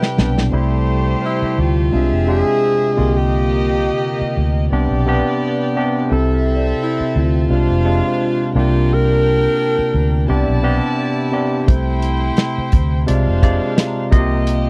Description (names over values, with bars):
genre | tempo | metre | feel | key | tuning
lush 1970s-style soul | 86 BPM | 4/4 | swing 54% on 16ths | C major | A4 = 435 Hz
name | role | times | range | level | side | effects
breathy alto saxophone | melody | 0.0-10.3 s | C4 to Bb4 | -22 LUFS | equal | none
warm studio violin section | second line | 0.0-14.7 s | A3 to A5 | -27 LUFS | equal | none
barky tine electric piano | accompaniment | 0.0-14.7 s | C3 to Eb5 | -22 LUFS | equal | overdrive
warm soul drum kit | drums | 0.0-0.5, 11.7-14.6 s | hi-hat, kick drum, snare drum | -16 LUFS | equal | none
worn celesta | texture | 0.0-14.7 s | Ab4 to B5 | -36 LUFS | equal | none
vintage muted fingered electric bass | bass | 0.2-14.7 s | F1 to D2 | -19 LUFS | equal | none
room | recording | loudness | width
little or no reverb | dry, close 1970s-style studio recording | -17 LUFS | mono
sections
0.5-14.7 A section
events
drum fill 0.0-0.5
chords
0.0 Cmaj7; 0.5 C6; 1.9 Dm9b5/F; 3.0 Ebmaj9/C; 4.7 Gadd11/B; 6.1 C6; 7.5 Fm6; 8.6 C9sus4; 10.3 Em7; 11.7 C6; 13.1 Bb9; 14.1 Ebadd9/C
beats
| 0.53 1.23 1.92 2.62 | 3.32 4.02 4.71 5.41 | 6.11 6.81 7.50 8.20 | 8.90 9.60 10.29 10.99 | 11.69 12.39 13.08 13.78 | 14.48